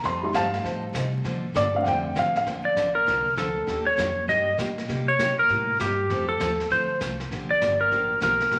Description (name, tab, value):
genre	country, western swing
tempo	198 BPM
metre	4/4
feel	swing 63% on 8ths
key	Bb major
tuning	A4 = 440 Hz
part	dark upright piano	accompaniment	0.0-2.5 s	G3 to C6	-27 LUFS	equal	none
part	picked steel-string acoustic guitar	accompaniment	0.0-8.6 s	C3 to A4	-35 LUFS	equal	none
part	upright bass	bass	0.0-8.6 s	G1 to C3	-36 LUFS	equal	none
part	vintage brush drum kit	drums	0.0-8.6 s	brushed snare drum, hi-hat, kick drum, snare drum	-38 LUFS	equal	none
part	clean lap steel guitar	melody	2.7-8.6 s	G4 to Eb5	-24 LUFS	equal	none
room	wet large studio reverb, RT60 1.5 s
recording	vinyl crackle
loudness	-24 LUFS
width	mono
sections	0.0-2.5 A section; 2.5-8.6 A section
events	upright piano solo 0.0-2.5; electric slide guitar solo 2.5-8.6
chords	0.0 F7; 1.2 Bbmaj7; 3.7 Ebmaj7; 4.9 Cm7; 6.1 F; 7.3 Bb6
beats	| 0.04 0.34 0.65 0.95 | 1.25 1.55 1.85 2.16 | 2.46 2.76 3.07 3.37 | 3.67 3.98 4.28 4.58 | 4.88 5.19 5.49 5.79 | 6.10 6.40 6.70 7.00 | 7.31 7.61 7.91 8.22 | 8.52